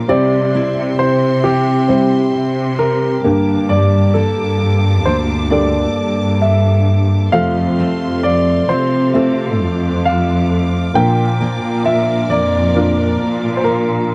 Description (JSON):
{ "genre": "pop", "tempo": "66 BPM", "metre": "4/4", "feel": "straight", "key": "F major", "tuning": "A4 = 441 Hz", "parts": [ { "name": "warm concert grand piano", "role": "melody", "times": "0.0-14.1 s", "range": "G4 to G5", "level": "-21 LUFS", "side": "equal", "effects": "none" }, { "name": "warm upright piano", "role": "accompaniment", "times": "0.0-14.1 s", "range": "G2 to C5", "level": "-23 LUFS", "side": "equal", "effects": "none" }, { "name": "rich studio string section", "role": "sustained chords", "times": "0.0-14.1 s", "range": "Bb3 to D6", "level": "-29 LUFS", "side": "equal", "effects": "none" }, { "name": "fingerpicked steel-string acoustic guitar", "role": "arpeggios", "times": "0.0-14.1 s", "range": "G2 to Bb4", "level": "-24 LUFS", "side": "equal", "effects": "none" }, { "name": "muted chamber cello section", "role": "bass", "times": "0.0-14.1 s", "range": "D2 to C3", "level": "-19 LUFS", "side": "equal", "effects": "none" } ], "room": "little or no reverb", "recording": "dry, close 1970s-style studio recording", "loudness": "-15 LUFS", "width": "mono", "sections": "0.0-14.1 A section", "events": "none", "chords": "0.1 C; 3.2 Gmadd9; 7.3 F" }